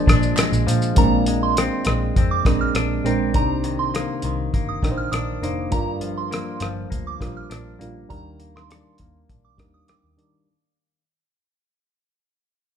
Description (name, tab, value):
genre	indie pop, bedroom pop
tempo	101 BPM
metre	4/4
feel	straight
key	Eb major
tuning	A4 = 440 Hz
part	reed electric piano	accompaniment	0.0-10.5 s	F3 to C5	-26 LUFS	right 4 dB	low-pass filter
part	semi-hollow electric guitar	accompaniment	0.0-11.0 s	G2 to G4	-27 LUFS	left 6 dB	warbly pitch drift, low-pass filter
part	vintage muted picked electric bass	bass	0.1-10.4 s	F1 to Eb3	-25 LUFS	equal	none
part	cloth-damped thuddy drum kit	drums	0.1-10.3 s	hi-hat, kick drum, rim click, shaker	-21 LUFS	equal	none
part	group handclap	percussion	0.4-0.5 s	none	-31 LUFS	right 3 dB	none
part	soft synth bell	second line	1.0-10.3 s	Bb5 to F6	-28 LUFS	right 5 dB	chorus
room	moderate large studio reverb, RT60 1.1 s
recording	band playing live in one room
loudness	-19 LUFS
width	side -8 dB against mid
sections	1.0-10.5 A section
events	fade-out 1.0-10.5; filter sweep 1.0-10.5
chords	0.0 Bb7; 1.0 Bb9; 3.3 Cm9; 5.7 Gm7; 8.1 Ebmaj7